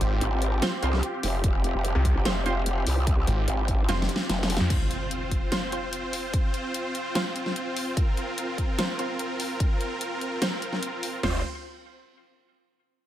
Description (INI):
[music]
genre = heavy wobble dubstep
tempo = 147 BPM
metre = 4/4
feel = half-time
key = F minor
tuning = A4 = 440 Hz
[part]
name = supersaw chords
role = sustained chords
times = 0.0-11.4 s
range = C4 to C5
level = -31 LUFS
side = right 1 dB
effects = sidechain pumping, low-pass filter
[part]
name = snarling distorted saw bass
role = bass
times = 0.0-4.7 s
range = F1 to F2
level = -24 LUFS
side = equal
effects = distortion, overdrive
[part]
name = dubstep drum kit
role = drums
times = 0.0-11.1 s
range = crash cymbal, hi-hat, snare drum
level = -30 LUFS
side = left 1 dB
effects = none
[part]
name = growl bass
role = bass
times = 0.2-4.6, 11.2-11.4 s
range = F1 to C2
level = -26 LUFS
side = equal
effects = chorus, overdrive
[part]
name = orchestra-hit-like synth stab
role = stabs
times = 0.6-11.4 s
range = C4 to C5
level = -34 LUFS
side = right 3 dB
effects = built-in reverb, ping-pong delay
[part]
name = dubstep drum kit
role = drums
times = 1.4-11.3 s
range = crash cymbal, kick drum, snare drum, toms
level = -26 LUFS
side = equal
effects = none
[part]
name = impact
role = sound effects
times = 4.7-6.3 s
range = none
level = -35 LUFS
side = equal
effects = none
[sound]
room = little or no reverb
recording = none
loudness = -24 LUFS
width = side -12 dB against mid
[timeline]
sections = 0.0-4.7 A section; 4.7-11.2 B section; 11.2-12.9 C section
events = drop 0.0-4.7; drum fill 3.9-4.7; impact 4.7-6.3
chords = 0.0 F5